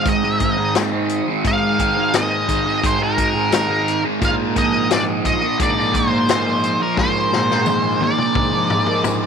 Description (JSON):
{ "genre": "psychedelic rock", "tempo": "87 BPM", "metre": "4/4", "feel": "straight", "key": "unclear", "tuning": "A4 = 441 Hz", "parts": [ { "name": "octave-fuzz lead guitar", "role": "melody", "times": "0.0-9.0 s", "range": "Bb4 to F5", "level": "-20 LUFS", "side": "equal", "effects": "distortion, tape echo" }, { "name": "string machine, cellos", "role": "sustained chords", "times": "0.0-9.3 s", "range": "D3 to F5", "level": "-32 LUFS", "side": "right 17 dB", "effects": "none" }, { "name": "fuzz guitar", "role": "riff", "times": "0.0-9.3 s", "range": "Ab2 to Bb3", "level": "-20 LUFS", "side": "right 1 dB", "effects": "distortion, phaser" }, { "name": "fuzz fingered electric bass", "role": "bass", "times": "0.1-9.3 s", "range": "Ab2", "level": "-24 LUFS", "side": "equal", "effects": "overdrive" }, { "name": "vintage drum kit", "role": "drums", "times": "0.1-9.2 s", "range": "hi-hat, kick drum, snare drum, toms", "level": "-22 LUFS", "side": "left 3 dB", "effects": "none" }, { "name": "tambourine", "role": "percussion", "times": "0.8-9.2 s", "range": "none", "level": "-34 LUFS", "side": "left 15 dB", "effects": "none" } ], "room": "little or no reverb", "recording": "1960s-style stereo with parts hard left and right", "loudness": "-16 LUFS", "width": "side -6 dB against mid", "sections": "0.0-9.3 A section", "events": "drum fill 7.0-9.3", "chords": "0.0 Ab; 4.2 Bb" }